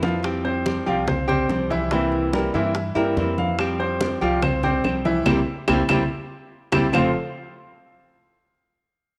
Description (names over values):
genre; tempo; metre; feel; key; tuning
latin, Cuban son and guajira; 143 BPM; 4/4; straight; unclear; A4 = 441 Hz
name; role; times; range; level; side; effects
nylon-string guitar; accompaniment; 0.0-7.1 s; F2 to G4; -27 LUFS; equal; none
clear baby grand piano; arpeggios; 0.0-7.1 s; E3 to F5; -26 LUFS; equal; none
upright bass; bass; 0.0-7.1 s; F1 to G2; -32 LUFS; equal; none
bongos; percussion; 0.0-7.0 s; none; -32 LUFS; equal; none
congas; percussion; 0.0-7.0 s; none; -30 LUFS; equal; none
claves; percussion; 3.6-7.0 s; none; -30 LUFS; equal; none
room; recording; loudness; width
moderate echo chamber reverb, RT60 1.8 s, small room ambience; none; -22 LUFS; mono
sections
0.2-6.9 A section; 6.9-8.6 B section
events
drum fill 0.0, 6.1-6.9; band accent 5.3-6.9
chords
0.2 Fsus2; 1.9 C7; 3.6 Fsus2; 5.3 C7; 6.9 F